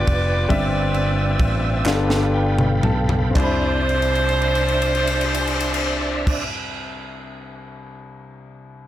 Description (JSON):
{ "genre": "slow gospel", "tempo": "38-47 BPM (dotted quarters)", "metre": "6/8", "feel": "straight", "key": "C major", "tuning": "A4 = 442 Hz", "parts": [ { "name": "edgy saxophone section", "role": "melody", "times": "0.0-6.4 s", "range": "F4 to D5", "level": "-23 LUFS", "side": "right 1 dB", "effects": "none" }, { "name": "warm concert grand piano", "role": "accompaniment", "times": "0.0-8.9 s", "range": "C2 to B5", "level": "-26 LUFS", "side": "left 3 dB", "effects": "none" }, { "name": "bright tonewheel organ", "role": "sustained chords", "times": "0.0-6.4 s", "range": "C4 to E6", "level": "-27 LUFS", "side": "right 3 dB", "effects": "slow rotary speaker, overdrive, chorus vibrato" }, { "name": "fingered electric bass", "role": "bass", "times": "0.0-6.4 s", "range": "F1 to C2", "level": "-22 LUFS", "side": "equal", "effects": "none" }, { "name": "crisp fusion drum kit", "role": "drums", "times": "0.1-8.0 s", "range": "crash cymbal, kick drum, ride cymbal, snare drum, toms", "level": "-24 LUFS", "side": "equal", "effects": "none" }, { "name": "group handclap", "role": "percussion", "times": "1.9-6.4 s", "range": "none", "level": "-29 LUFS", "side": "right 3 dB", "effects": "none" } ], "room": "light reverb, small room ambience", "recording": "none", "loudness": "-17 LUFS", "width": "side -13 dB against mid", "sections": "0.0-3.4 A section; 3.4-6.5 B section", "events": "slowing down 0.0-3.4; drum fill 1.9-3.4, 3.9-6.3; grand piano fill 1.9-3.4", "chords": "0.0 G7; 0.5 C/G; 1.9 G9; 3.4 Cmaj9" }